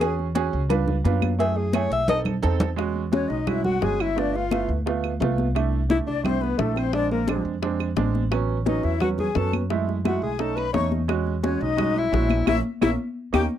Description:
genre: Afro-Cuban jazz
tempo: 173 BPM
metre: 4/4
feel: straight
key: E major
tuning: A4 = 440 Hz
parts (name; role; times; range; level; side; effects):
- breathy alto saxophone; melody; 0.0-13.4 s; A3 to E5; -25 LUFS; left 3 dB; none
- warm baby grand piano; accompaniment; 0.0-13.4 s; F#3 to B4; -27 LUFS; right 9 dB; none
- upright bass; bass; 0.0-13.5 s; G1 to F#2; -26 LUFS; equal; none
- claves; percussion; 0.0-13.4 s; none; -35 LUFS; right 27 dB; none
- congas; percussion; 0.0-13.4 s; none; -28 LUFS; left 2 dB; none
- cowbell and bongos; percussion; 0.0-13.4 s; none; -30 LUFS; left 9 dB; none
- breathy bright jazz flute; second line; 3.1-13.5 s; A4 to C#6; -31 LUFS; left 14 dB; none
room: little or no reverb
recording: dry, close 1970s-style studio recording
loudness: -21 LUFS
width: side -10 dB against mid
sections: 0.0-2.8 A section; 2.8-13.6 B section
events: alto saxophone solo 0.0-2.8; drum fill 1.7-2.8, 13.2-13.6; band accent 12.5-13.6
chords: 0.0 E6; 0.7 C#7b9; 1.4 F#m7; 2.1 B7b9; 2.8 E6; 4.2 G7; 5.6 C6; 6.9 A#9; 8.3 A69; 9.7 F#m7; 10.4 B9; 11.1 E6; 12.5 A#dim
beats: | 0.02 0.37 0.71 1.06 | 1.40 1.75 2.09 2.44 | 2.78 3.13 3.47 3.82 | 4.17 4.51 4.86 5.21 | 5.55 5.90 6.24 6.59 | 6.94 7.28 7.63 7.97 | 8.32 8.67 9.01 9.36 | 9.71 10.05 10.40 10.74 | 11.09 11.44 11.78 12.13 | 12.47 12.82 13.17

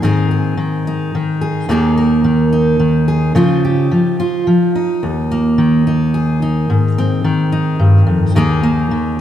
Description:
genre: folk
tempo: 108 BPM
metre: 3/4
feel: straight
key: Eb major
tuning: A4 = 441 Hz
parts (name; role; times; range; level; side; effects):
- fingerpicked steel-string acoustic guitar; solo; 0.0-9.2 s; Eb2 to Bb4; -12 LUFS; equal; none
room: moderate scoring stage reverb, RT60 1.9 s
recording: none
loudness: -12 LUFS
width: side -10 dB against mid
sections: 0.0-5.0 A section; 5.0-9.2 A section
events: none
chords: 0.0 Ab; 1.7 Ebsus4; 3.4 Dbadd9; 5.0 Ebsus4; 6.7 Ab; 8.4 Ebsus4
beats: | 0.01 0.57 1.13 | 1.69 2.25 2.80 | 3.36 3.92 4.47 | 5.03 5.59 6.14 | 6.70 7.25 7.81 | 8.36 8.92

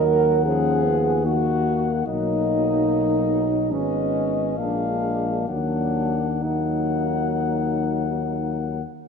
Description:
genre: classical, hymn-like piece for brass band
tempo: 64-75 BPM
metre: 4/4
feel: rubato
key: Eb minor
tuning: A4 = 440 Hz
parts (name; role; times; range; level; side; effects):
- dark cornet; melody; 0.0-8.8 s; D#5 to Gb5; -27 LUFS; left 12 dB; none
- mellow French horn section; second line; 0.0-8.7 s; Db4 to Bb4; -24 LUFS; right 5 dB; none
- warm euphonium; accompaniment; 0.0-8.8 s; A#3 to Db4; -29 LUFS; left 5 dB; none
- warm trombone; accompaniment; 0.0-8.8 s; Eb3 to Ab3; -31 LUFS; right 1 dB; none
- mellow tuba; bass; 0.0-8.8 s; Ab1 to Eb2; -26 LUFS; left 2 dB; none
room: moderate concert hall reverb, RT60 2.2 s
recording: minimal, uncompressed stereo recording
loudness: -20 LUFS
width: side -6 dB against mid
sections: 0.0-9.1 A section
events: none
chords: 0.0 Ebm; 2.1 Bmaj7; 3.7 Abm; 4.6 Bb7; 5.5 Ebm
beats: 0.46 1.26 | 2.08 2.90 3.73 4.59 | 5.50 6.43 7.37 8.28

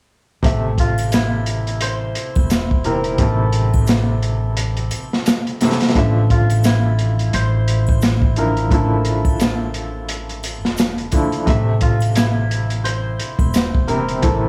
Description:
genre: trip hop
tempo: 87 BPM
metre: 4/4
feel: swing 58% on 16ths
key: A minor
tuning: A4 = 437 Hz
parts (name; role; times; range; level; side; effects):
- felt-muted upright piano; accompaniment; 0.4-14.5 s; C3 to E5; -26 LUFS; equal; tremolo, low-pass filter, tape echo
- upright bass; bass; 0.4-14.5 s; E1 to A1; -21 LUFS; equal; none
- crunchy breakbeat drum kit; drums; 0.4-14.4 s; hi-hat, kick drum, snare drum; -22 LUFS; equal; vintage 12-bit sampler grit
- hammered dulcimer; melody; 0.8-14.5 s; E4 to C5; -28 LUFS; equal; tape echo
- triangle and tube shaker; percussion; 1.0-13.7 s; none; -41 LUFS; equal; none
room: small room reverb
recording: studio reverb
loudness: -18 LUFS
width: mono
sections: 0.4-14.5 A section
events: none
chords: 0.4 Am; 6.0 Dmadd9/A; 11.5 Am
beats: | 0.44 1.13 1.82 2.50 | 3.19 3.88 4.57 5.26 | 5.95 6.64 7.33 8.02 | 8.71 9.40 10.09 10.78 | 11.47 12.16 12.85 13.54 | 14.23

